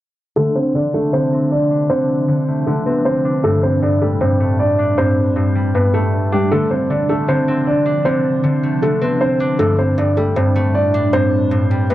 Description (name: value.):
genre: hip hop.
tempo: 156 BPM.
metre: 4/4.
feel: half-time.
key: D minor.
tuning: A4 = 440 Hz.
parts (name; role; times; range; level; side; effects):
dark concert grand piano; melody; 0.4-11.9 s; G3 to D5; -17 LUFS; equal; low-pass filter, tape echo.
concert harp; accompaniment; 0.4-11.9 s; G2 to D4; -18 LUFS; left 1 dB; low-pass filter.
glassy FM pad; sustained chords; 0.7-11.9 s; A2 to D4; -25 LUFS; right 1 dB; ensemble chorus, built-in reverb, phaser, low-pass filter.
room: small room ambience.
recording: dry, gritty hardware recording.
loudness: -14 LUFS.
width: side -14 dB against mid.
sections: 0.4-11.9 A section.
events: filter sweep 0.4-11.9.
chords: 0.4 Dm7; 3.4 Gsus2; 6.5 Dm7; 9.6 Gsus2.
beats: | 0.36 0.75 1.13 1.51 | 1.90 2.28 2.67 3.05 | 3.44 3.82 4.21 4.59 | 4.98 5.36 5.75 6.13 | 6.51 6.90 7.28 7.67 | 8.05 8.44 8.82 9.21 | 9.59 9.98 10.36 10.75 | 11.13 11.52 11.90.